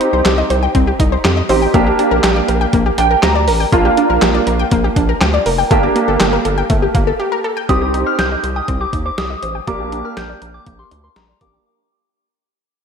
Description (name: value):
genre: synth-pop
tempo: 121 BPM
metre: 4/4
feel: straight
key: G minor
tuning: A4 = 440 Hz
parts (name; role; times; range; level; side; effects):
- clear baby grand piano; accompaniment; 0.0-11.7 s; Bb3 to Bb5; -17 LUFS; right 3 dB; ensemble chorus, low-pass filter
- analog pluck; arpeggios; 0.0-11.6 s; A3 to G5; -18 LUFS; left 2 dB; chorus, low-pass filter, ping-pong delay
- detuned 8-bit digital drum machine; drums; 0.0-11.5 s; handclaps, hi-hat, kick drum, snare drum; -18 LUFS; equal; none
- round analog bass; bass; 0.1-11.6 s; F1 to F2; -19 LUFS; equal; none
- soft synth bell; second line; 7.7-11.5 s; Bb5 to G6; -22 LUFS; left 1 dB; chorus, phaser, ping-pong delay
room: wet lush hall reverb, RT60 1.9 s, digital ambience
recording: dreamy mix soaked in reverb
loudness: -12 LUFS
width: side -6 dB against mid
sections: 0.0-7.7 A section; 7.7-11.7 B section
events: grand piano fill 2.7-3.7; break 7.2-7.7; fade-out 7.7-11.7; filter sweep 7.7-11.7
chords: 0.0 Cm; 1.7 Gm/Bb; 3.7 Bb6; 5.7 Gmadd9; 7.7 Cm; 9.7 Gm/Bb